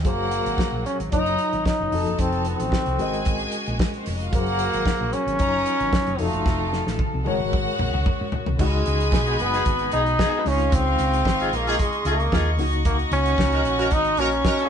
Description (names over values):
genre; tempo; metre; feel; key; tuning
disco; 112 BPM; 4/4; straight; unclear; A4 = 440 Hz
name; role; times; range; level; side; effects
clear studio string section; second line; 0.0-14.7 s; C4 to Bb5; -32 LUFS; equal; none
barky reed electric piano; accompaniment; 0.0-14.7 s; Db3 to Eb5; -30 LUFS; left 4 dB; overdrive, fast tremolo
hollow-body short-scale fingered electric bass; bass; 0.0-14.4 s; F1 to Ab2; -26 LUFS; equal; none
damped 70s drum kit; drums; 0.0-14.7 s; crash cymbal, hi-hat, kick drum, snare drum, toms; -25 LUFS; equal; none
bright trombone; melody; 0.1-14.7 s; Ab3 to Eb4; -24 LUFS; equal; none
warm studio string section; sustained chords; 0.1-14.7 s; Db3 to Db6; -32 LUFS; equal; none
warm horn section; stabs; 9.3-14.7 s; Cb4 to Bb4; -27 LUFS; equal; none
room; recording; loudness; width
moderate stone room reverb, RT60 1.1 s; band playing live in one room, nothing above 10.3 kHz; -20 LUFS; side -8 dB against mid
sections
0.1-8.6 A section; 8.6-14.7 B section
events
drum fill 6.5-8.6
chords
0.1 Gbadd9; 1.1 Ebm7/Gb; 1.9 F7b9; 3.0 Ab9sus4; 4.3 Gbadd9; 5.4 Ebm7/Gb; 6.2 F7b9; 7.3 Ab9sus4; 8.6 Cb6; 10.5 Bbm11; 12.6 Ebm7